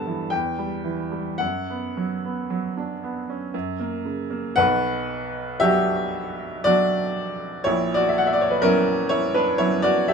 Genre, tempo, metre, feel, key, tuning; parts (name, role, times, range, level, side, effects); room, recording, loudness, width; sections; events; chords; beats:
classical, romantic nocturne for solo piano; 52-63 BPM; 3/4; rubato; B minor; A4 = 440 Hz
clear upright piano; solo; 0.0-10.1 s; A#1 to B5; -21 LUFS; equal
light reverb; minimal, uncompressed stereo recording; -21 LUFS; side -6 dB against mid
0.0-4.6 A section; 4.6-10.1 B section
0.3 Em; 1.4 Bm/F#; 3.5 F#; 4.6 Bm; 7.7 F#7/A#
0.31 | 1.40 2.51 3.54 | 4.57 5.62 6.67 | 7.67 8.64 9.60